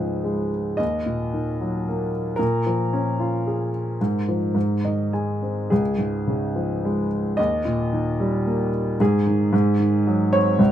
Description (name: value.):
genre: classical, lyrical solo piano.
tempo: 101-116 BPM.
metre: 3/4.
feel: rubato.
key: Db major.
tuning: A4 = 436 Hz.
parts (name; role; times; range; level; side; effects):
dark grand piano; solo; 0.0-10.7 s; Db2 to Ab5; -20 LUFS; equal; none.
room: moderate studio ambience, RT60 0.5 s.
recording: minimal, uncompressed stereo recording.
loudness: -20 LUFS.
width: side -11 dB against mid.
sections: 0.0-10.7 A section.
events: grand piano fill 4.6-5.7.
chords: 0.0 Db; 0.8 Ebm; 2.4 Bbm7; 4.0 Fmadd11/Ab; 4.6 Ab; 5.7 Db; 7.4 Eb; 9.0 Ab5; 9.5 Ab7.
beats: 0.24 | 0.79 1.33 1.86 | 2.38 2.91 3.45 | 4.00 4.56 5.13 | 5.71 6.27 6.84 | 7.38 7.93 8.46 | 9.00 9.53 10.06 | 10.60.